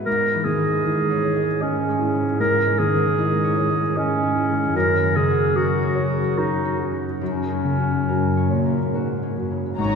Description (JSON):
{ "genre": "cinematic, emotional film score for orchestra", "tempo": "68-78 BPM", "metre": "3/4", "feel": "rubato", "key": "unclear", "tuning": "A4 = 440 Hz", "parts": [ { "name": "dark baby grand piano", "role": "accompaniment", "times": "0.0-10.0 s", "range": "F#2 to D#5", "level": "-25 LUFS", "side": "left 1 dB", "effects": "none" }, { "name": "concert harp", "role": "arpeggios", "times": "0.0-10.0 s", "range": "F#2 to G#5", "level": "-28 LUFS", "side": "left 4 dB", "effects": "none" }, { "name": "muted studio cello section", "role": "bass", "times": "0.0-10.0 s", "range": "F#2 to A#2", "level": "-27 LUFS", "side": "right 3 dB", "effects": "none" }, { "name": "warm clarinet", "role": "second line", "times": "0.1-8.9 s", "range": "C#4 to A#4", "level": "-22 LUFS", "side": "right 1 dB", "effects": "none" }, { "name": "muted studio violin section", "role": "melody", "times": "9.8-10.0 s", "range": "A#5", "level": "-27 LUFS", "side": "left 2 dB", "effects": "none" }, { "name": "muted studio violin section", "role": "second line", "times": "9.8-10.0 s", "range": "C#5", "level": "-29 LUFS", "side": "left 5 dB", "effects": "none" }, { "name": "muted studio viola section", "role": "accompaniment", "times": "9.8-10.0 s", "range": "C#4 to D#4", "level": "-27 LUFS", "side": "right 2 dB", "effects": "none" }, { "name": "muted studio double bass section", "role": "bass", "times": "9.8-10.0 s", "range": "G#1", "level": "-30 LUFS", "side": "right 2 dB", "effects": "none" } ], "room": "wet cathedral reverb, RT60 5.8 s", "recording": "recorded in a church or concert hall", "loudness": "-19 LUFS", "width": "side -6 dB against mid", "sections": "0.0-9.8 A section", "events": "none", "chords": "0.1 C#madd9/G#; 4.7 F#" }